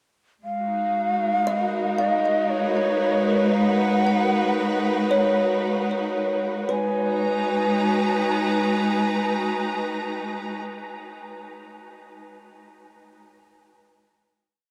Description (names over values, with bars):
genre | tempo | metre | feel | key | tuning
ambient | 57 BPM | 3/4 | straight | G# dorian | A4 = 440 Hz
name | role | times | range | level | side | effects
breathy shakuhachi | melody | 0.4-10.6 s | C#5 to G#5 | -28 LUFS | equal | delay
clear symphonic string section | sustained chords | 0.4-10.6 s | G#3 to A#5 | -26 LUFS | equal | none
kalimba | arpeggios | 1.5-11.1 s | B4 to F#5 | -30 LUFS | equal | delay
room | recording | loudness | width
wet huge ambient reverb, RT60 8.6 s | in a vast, echoing space | -23 LUFS | mono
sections
0.4-6.7 A section; 6.7-9.8 final chord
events
none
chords
0.4 G#m7